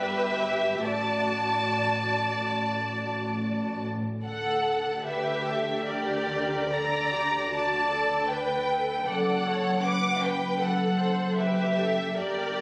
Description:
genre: classical, slow romantic movement for string orchestra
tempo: 61-79 BPM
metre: 4/4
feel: rubato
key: D major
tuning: A4 = 440 Hz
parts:
  - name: warm studio violin section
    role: melody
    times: 0.0-12.6 s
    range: D5 to D6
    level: -31 LUFS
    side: equal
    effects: none
  - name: rich studio violin section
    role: second line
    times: 0.0-12.6 s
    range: G4 to F#5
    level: -33 LUFS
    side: equal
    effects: none
  - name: dark studio viola section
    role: accompaniment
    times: 0.0-12.6 s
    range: F#4 to D5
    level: -37 LUFS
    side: equal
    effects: none
  - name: dark studio cello section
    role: bass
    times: 0.0-12.6 s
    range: F#2 to D3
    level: -35 LUFS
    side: equal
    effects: none
  - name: warm studio double bass section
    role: bass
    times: 0.0-12.6 s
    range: F#1 to D2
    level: -40 LUFS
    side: equal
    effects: none
room: moderate scoring stage reverb, RT60 1.6 s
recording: recorded on a phone in the room, club reverb, compression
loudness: -27 LUFS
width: mono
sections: 0.0-12.6 A section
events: none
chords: 0.0 Em/G; 0.8 D/A; 4.3 D5; 9.1 Gmaj9#11/F#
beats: | 0.82 1.70 2.56 3.41 | 4.26 5.06 5.86 6.72 | 7.52 8.30 9.09 9.86 | 10.61 11.39 12.19

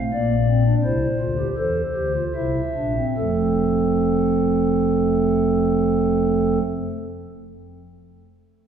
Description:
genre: classical, baroque-style 3-part fugue for pipe organ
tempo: 70-87 BPM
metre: 3/4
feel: straight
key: F major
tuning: A4 = 440 Hz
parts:
  - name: pipe organ, stopped flute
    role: solo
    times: 0.0-6.6 s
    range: F1 to E5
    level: -19 LUFS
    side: right 1 dB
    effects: none
room: wet church reverb, RT60 2.7 s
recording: recorded in a church or concert hall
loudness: -18 LUFS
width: side -7 dB against mid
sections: 0.0-3.2 A section; 3.2-8.3 B section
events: slowing down 0.0-3.2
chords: 0.1 Bbadd9; 0.8 F/C; 2.4 C7; 3.2 F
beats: 0.14 | 0.84 1.58 2.35 | 3.17 4.02 4.87 | 5.72 6.56

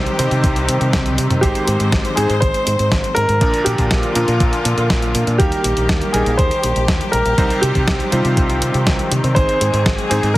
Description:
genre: italo disco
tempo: 121 BPM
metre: 4/4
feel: straight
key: unclear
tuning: A4 = 440 Hz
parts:
  - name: dark grand piano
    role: melody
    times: 0.0-10.4 s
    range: F4 to C5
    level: -20 LUFS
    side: equal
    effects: digital delay
  - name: rich symphonic string section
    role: sustained chords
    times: 0.0-10.4 s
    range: D3 to C5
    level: -23 LUFS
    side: left 1 dB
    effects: none
  - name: bright electric grand piano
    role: stabs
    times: 0.0-10.3 s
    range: Ab2 to C5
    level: -22 LUFS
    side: right 1 dB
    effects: none
  - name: fingered electric bass with an envelope filter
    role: bass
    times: 0.0-10.4 s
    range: Ab1 to C3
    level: -20 LUFS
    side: equal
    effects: tube saturation
  - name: clean 12-bit digital drum machine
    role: drums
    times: 0.1-10.4 s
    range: hi-hat, snare drum, toms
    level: -22 LUFS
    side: equal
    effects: none
  - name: electronic kick drum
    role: drums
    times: 0.4-10.4 s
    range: none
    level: -19 LUFS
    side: equal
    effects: none
room: light reverb, digital ambience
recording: heavily compressed radio sound, multiband compression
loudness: -14 LUFS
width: side -17 dB against mid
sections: 0.0-10.4 A section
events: drum fill 0.9-1.4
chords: 0.0 Cm; 1.4 Ab; 3.4 Bb; 5.4 Eb; 7.4 Cm; 9.4 Ab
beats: 0.44 0.93 | 1.43 1.93 2.42 2.92 | 3.41 3.91 4.40 4.90 | 5.40 5.89 6.39 6.88 | 7.38 7.88 8.37 8.87 | 9.36 9.86 10.36

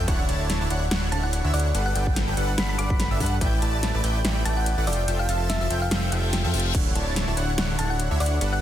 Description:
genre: future bass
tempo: 144 BPM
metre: 4/4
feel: swing 55% on 16ths, half-time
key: D major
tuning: A4 = 441 Hz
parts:
  - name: fat analog bass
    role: bass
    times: 0.0-8.6 s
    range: D1 to G2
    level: -25 LUFS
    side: equal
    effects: sidechain pumping
  - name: airy dreamy lead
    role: arpeggios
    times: 0.1-8.6 s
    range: E5 to A5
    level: -35 LUFS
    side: right 1 dB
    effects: chorus, sidechain pumping, dub echo
  - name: supersaw chords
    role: riff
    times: 0.1-8.6 s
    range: D3 to A5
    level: -28 LUFS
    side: equal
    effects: sidechain pumping
  - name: big-room dance drum kit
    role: drums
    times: 0.1-8.5 s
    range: crash cymbal, hi-hat, snare drum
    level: -29 LUFS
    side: equal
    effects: none
  - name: electronic kick drum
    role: drums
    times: 0.1-3.5, 6.7-6.8 s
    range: none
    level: -25 LUFS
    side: equal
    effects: none
  - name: thumb-piano-like synth pluck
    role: melody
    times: 1.1-8.6 s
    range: D5 to D6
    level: -31 LUFS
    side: equal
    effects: chorus, sidechain pumping, digital delay
  - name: reverse cymbal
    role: sound effects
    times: 6.1-6.7 s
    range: none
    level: -32 LUFS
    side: left 6 dB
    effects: none
room: light reverb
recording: dense, heavily limited modern master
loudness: -21 LUFS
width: side -11 dB against mid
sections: 0.0-8.6 A section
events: kick drops out 5.1-6.7; reverse cymbal 6.1-6.7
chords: 0.1 Dmaj9; 1.7 Gmaj7; 3.4 A9sus4; 4.9 Fmaj7; 6.7 Dmaj9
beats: | 0.08 0.50 0.91 1.33 | 1.75 2.16 2.58 3.00 | 3.41 3.83 4.25 4.66 | 5.08 5.50 5.91 6.33 | 6.75 7.16 7.58 8.00 | 8.41

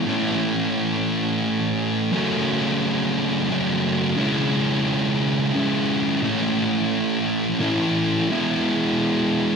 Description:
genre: rock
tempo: 58 BPM (dotted quarters)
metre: 6/8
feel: straight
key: A major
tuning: A4 = 440 Hz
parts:
  - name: thick fuzz guitar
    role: solo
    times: 0.0-9.6 s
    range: F#2 to E4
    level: -20 LUFS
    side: equal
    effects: distortion, diffuse ambient delay
room: wet plate reverb, RT60 3.0 s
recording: dreamy mix soaked in reverb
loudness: -20 LUFS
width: side -5 dB against mid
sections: 0.0-2.1 A section; 2.1-9.6 B section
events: none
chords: 0.1 A; 2.1 F#m; 4.2 C#m; 6.2 A; 8.3 E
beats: | 0.07 1.10 | 2.13 3.15 | 4.18 5.21 | 6.24 7.26 | 8.29 9.32

